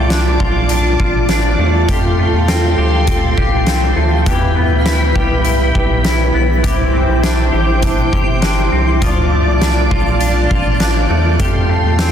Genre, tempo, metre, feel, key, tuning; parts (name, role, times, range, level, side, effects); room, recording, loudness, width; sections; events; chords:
dream pop; 101 BPM; 4/4; straight; A4 = 439 Hz
ensemble organ-string; sustained chords; 0.0-12.1 s; E4 to D6; -18 LUFS; right 1 dB; ensemble chorus
clean electric guitar; arpeggios; 0.0-12.1 s; E3 to G4; -20 LUFS; left 4 dB; analog chorus, ping-pong delay
round analog bass; bass; 0.0-12.1 s; G1 to F2; -16 LUFS; equal
twinkling granular texture; texture; 0.0-10.9 s; B5 to G6; -32 LUFS; equal
oversized low-tuned drum kit; drums; 0.1-12.1 s; hi-hat, kick drum, snare drum; -17 LUFS; equal
light reverb, small room reverb; dense, heavily limited modern master; -12 LUFS; side -9 dB against mid
0.0-12.1 A section
0.0 Dm; 1.9 Fadd9; 4.3 Em; 6.6 Cadd9; 9.0 Dm; 11.4 Fadd9